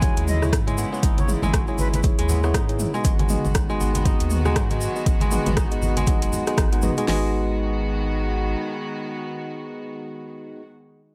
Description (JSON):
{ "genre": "afro house", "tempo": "119 BPM", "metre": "4/4", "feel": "swing 58% on 16ths", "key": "G# minor", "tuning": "A4 = 439 Hz", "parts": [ { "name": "reedy silver concert flute", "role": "melody", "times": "0.0-2.0 s", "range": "B4 to G#5", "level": "-36 LUFS", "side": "equal", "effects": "dub echo" }, { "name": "warm studio string section", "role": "sustained chords", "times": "0.0-10.6 s", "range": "C#3 to F#4", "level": "-35 LUFS", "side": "equal", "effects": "sidechain pumping" }, { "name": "kora", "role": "arpeggios", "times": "0.0-9.2 s", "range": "F#3 to D#4", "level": "-32 LUFS", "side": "equal", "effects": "sidechain pumping, dub echo" }, { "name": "mellow tine electric piano", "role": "stabs", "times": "0.0-10.6 s", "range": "B3 to F#5", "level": "-31 LUFS", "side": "equal", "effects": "sidechain pumping, dub echo" }, { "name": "round analog bass", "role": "bass", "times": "0.0-8.6 s", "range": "F#1 to G#2", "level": "-27 LUFS", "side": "equal", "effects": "sidechain pumping" }, { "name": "deep house drum kit", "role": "drums", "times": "0.0-7.2 s", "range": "hi-hat, kick drum, snare drum", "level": "-25 LUFS", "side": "equal", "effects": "overdrive" }, { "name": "deep house drum kit", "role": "drums", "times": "0.0-7.1 s", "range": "hi-hat, rim click, toms", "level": "-31 LUFS", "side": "equal", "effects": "overdrive" }, { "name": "congas", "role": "percussion", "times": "0.0-6.9 s", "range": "none", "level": "-33 LUFS", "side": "equal", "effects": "none" }, { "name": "tube shaker", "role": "percussion", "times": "0.0-7.1 s", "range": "none", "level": "-39 LUFS", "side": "equal", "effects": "none" } ], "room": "little or no reverb", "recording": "none", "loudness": "-22 LUFS", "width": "mono", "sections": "0.0-7.1 A section; 7.1-11.1 B section", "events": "drop 0.0-7.1; band accent 6.6", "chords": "0.0 G#m7", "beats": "0.02 0.53 | 1.03 1.53 2.04 2.54 | 3.05 3.55 4.05 4.56 | 5.06 5.57 6.07 6.58 | 7.08 7.58 8.09 8.59 | 9.10 9.60 10.11 10.61" }